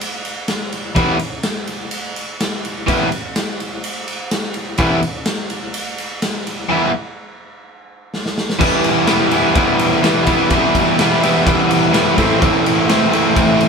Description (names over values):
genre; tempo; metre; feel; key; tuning
garage rock duo or trio; 126 BPM; 4/4; straight; E minor; A4 = 438 Hz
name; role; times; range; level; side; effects
raw garage drum kit; drums; 0.0-13.7 s; crash cymbal, kick drum, ride cymbal, snare drum; -20 LUFS; equal; none
crunchy overdriven guitar; riff; 1.0-13.7 s; A2 to E4; -13 LUFS; equal; none
room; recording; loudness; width
moderate studio reverb, RT60 0.6 s; band playing live in one room; -14 LUFS; side -5 dB against mid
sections
0.0-8.6 A section; 8.6-13.7 B section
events
drum fill 8.1-8.6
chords
0.0 Em; 12.2 Am